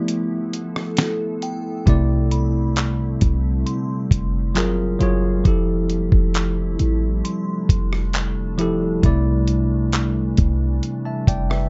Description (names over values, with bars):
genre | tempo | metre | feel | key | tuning
contemporary R&B | 67 BPM | 4/4 | straight | C major | A4 = 437 Hz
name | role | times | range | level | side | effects
bell-like tine electric piano | accompaniment | 0.0-11.7 s | C3 to A5 | -25 LUFS | equal | none
glassy FM pad | sustained chords | 0.0-11.7 s | C3 to A4 | -31 LUFS | equal | ensemble chorus, built-in reverb
glassy synth bell | texture | 0.0-8.1 s | G5 to C6 | -40 LUFS | equal | chorus, tape echo
dusty soul sampler-style drum kit | drums | 0.1-11.7 s | handclaps, hi-hat, kick drum, rim click, snare drum | -22 LUFS | equal | none
clean 808-style bass | bass | 1.9-11.7 s | E1 to C2 | -24 LUFS | equal | none
room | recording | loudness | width
light reverb | dark, warm production, nothing above 7.8 kHz | -20 LUFS | mono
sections
0.0-1.9 A section; 1.9-11.7 B section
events
break 0.0-1.9; tine electric piano solo 0.0-1.9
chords
0.0 G13; 1.9 C69; 4.6 F#maj9; 5.5 Fmaj9; 9.0 C69